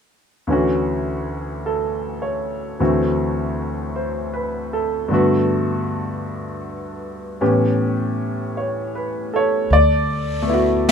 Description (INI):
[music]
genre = jazz ballad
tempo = 52 BPM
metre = 4/4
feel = swing 67% on 8ths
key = D major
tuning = A4 = 440 Hz
[part]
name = clear baby grand piano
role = accompaniment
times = 0.5-10.9 s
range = D2 to D5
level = -19 LUFS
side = equal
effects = none
[part]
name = upright bass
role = bass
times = 9.7-10.9 s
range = D2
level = -19 LUFS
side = equal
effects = none
[part]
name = jazz brush drum kit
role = drums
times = 9.7-10.9 s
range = brushed snare drum, hi-hat, snare drum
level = -21 LUFS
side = left 2 dB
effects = none
[sound]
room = light reverb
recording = minimal, uncompressed stereo recording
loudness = -18 LUFS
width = side -7 dB against mid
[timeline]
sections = 0.5-9.7 A section; 9.7-10.9 B section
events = none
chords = 0.5 Dmaj7; 2.8 D9; 5.1 Gmaj9; 7.4 A9; 9.7 D6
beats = | 0.49 1.64 2.80 3.95 | 5.10 6.26 7.41 8.56 | 9.71 10.87